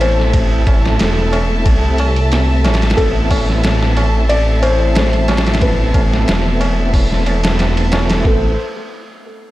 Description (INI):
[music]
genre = trip hop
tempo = 91 BPM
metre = 4/4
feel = swing 54% on 16ths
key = A minor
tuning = A4 = 440 Hz
[part]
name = felt-muted upright piano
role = melody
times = 0.0-8.6 s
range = A4 to D5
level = -22 LUFS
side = left 2 dB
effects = tape echo
[part]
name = tonewheel organ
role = accompaniment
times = 0.0-8.5 s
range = A3 to E4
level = -22 LUFS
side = equal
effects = overdrive, chorus vibrato, slow rotary speaker, tremolo, tape echo
[part]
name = dark studio violin section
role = sustained chords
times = 0.0-8.6 s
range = A3 to A5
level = -23 LUFS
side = equal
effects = none
[part]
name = dark detuned saw bass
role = bass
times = 0.0-8.6 s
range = E1 to C2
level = -15 LUFS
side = equal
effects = none
[part]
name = trip hop sampler-style drum kit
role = drums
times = 0.0-8.4 s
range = hi-hat, kick drum, ride cymbal, snare drum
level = -17 LUFS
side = equal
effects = tape echo
[part]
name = tabla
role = percussion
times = 0.0-8.2 s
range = none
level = -28 LUFS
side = equal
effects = none
[part]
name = wind-like tuned noise texture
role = texture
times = 0.0-8.3 s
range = A3 to C7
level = -33 LUFS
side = right 2 dB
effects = none
[sound]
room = little or no reverb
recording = echo-heavy mix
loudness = -12 LUFS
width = side -16 dB against mid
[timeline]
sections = 0.0-8.3 A section; 8.3-9.5 B section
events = none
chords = 0.0 Amadd9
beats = | 0.34 1.00 1.66 2.32 | 2.98 3.64 4.30 4.96 | 5.62 6.28 6.94 7.60 | 8.26